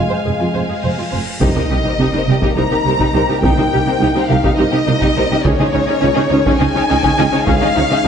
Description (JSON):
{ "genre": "cinematic, epic orchestral film score", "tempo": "208 BPM (eighths)", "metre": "7/8", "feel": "straight", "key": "C phrygian", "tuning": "A4 = 440 Hz", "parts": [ { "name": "warm studio violin section", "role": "melody", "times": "0.0-8.1 s", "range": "Db5 to Bb5", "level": "-19 LUFS", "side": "left 3 dB", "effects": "none" }, { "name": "rich symphonic violin section", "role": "second line", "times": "0.0-8.0 s", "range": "Db4 to F5", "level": "-22 LUFS", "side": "left 3 dB", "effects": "none" }, { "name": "mellow French horn section", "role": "sustained chords", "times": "0.0-8.1 s", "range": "Ab3 to Eb4", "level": "-24 LUFS", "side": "left 3 dB", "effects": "none" }, { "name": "rich symphonic double bass section", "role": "bass", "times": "0.0-8.1 s", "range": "F1 to Db2", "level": "-22 LUFS", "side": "right 4 dB", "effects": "none" }, { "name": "warm symphonic cello section", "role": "bass", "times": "0.0-8.1 s", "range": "F2 to Db3", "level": "-21 LUFS", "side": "right 3 dB", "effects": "none" }, { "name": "cymbal swell and sub drop", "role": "sound effects", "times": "0.5-3.4 s", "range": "none", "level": "-27 LUFS", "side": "equal", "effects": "none" }, { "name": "warm symphonic viola section", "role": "accompaniment", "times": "0.1-8.1 s", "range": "G3 to C5", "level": "-20 LUFS", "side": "right 1 dB", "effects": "none" }, { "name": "mellow tuba", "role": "bass", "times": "1.4-7.8 s", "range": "C2 to Db2", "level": "-22 LUFS", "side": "right 3 dB", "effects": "none" }, { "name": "solo taiko drums", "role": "drums", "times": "1.4-8.0 s", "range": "none", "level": "-21 LUFS", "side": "equal", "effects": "none" } ], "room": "moderate scoring stage reverb, RT60 1.5 s", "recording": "nothing above 10.6 kHz", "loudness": "-12 LUFS", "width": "side -7 dB against mid", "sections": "0.0-1.4 A section; 1.4-8.1 B section", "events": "cymbal swell 0.5-1.4; impact 1.4-3.4", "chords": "0.0 Fm; 1.4 Cm7; 5.5 Dbsus2" }